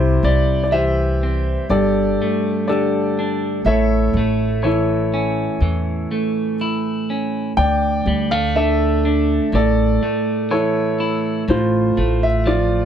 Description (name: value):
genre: acoustic folk-pop ballad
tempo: 61 BPM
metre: 4/4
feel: straight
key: unclear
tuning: A4 = 440 Hz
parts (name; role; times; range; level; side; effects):
- warm concert grand piano; melody; 0.0-12.8 s; E4 to G5; -20 LUFS; left 1 dB; none
- clean electric guitar; accompaniment; 0.0-12.8 s; D2 to E4; -20 LUFS; right 2 dB; none
- upright bass; bass; 0.0-12.8 s; G1 to E2; -20 LUFS; equal; none
room: light reverb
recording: none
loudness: -16 LUFS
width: side -9 dB against mid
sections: 0.0-12.8 A section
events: none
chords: 0.0 C; 1.7 Gsus2; 3.7 A; 7.6 D5; 9.5 A; 11.5 F6/A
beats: 0.72 1.70 2.68 | 3.65 4.63 5.61 6.59 | 7.57 8.55 9.53 10.51 | 11.48 12.46